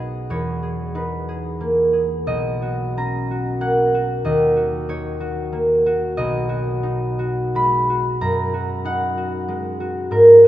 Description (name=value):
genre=classical, solo harp piece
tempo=93 BPM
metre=3/4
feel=rubato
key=B major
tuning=A4 = 440 Hz
part: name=concert harp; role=solo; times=0.0-10.5 s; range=B1 to B5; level=-16 LUFS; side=equal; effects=none
room=moderate cathedral reverb, RT60 4.4 s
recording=minimal, uncompressed stereo recording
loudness=-18 LUFS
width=side -14 dB against mid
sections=0.0-10.5 A section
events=none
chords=0.3 Emaj7#11; 2.3 Bmaj9; 4.3 D#m7; 6.2 B6; 8.2 F#69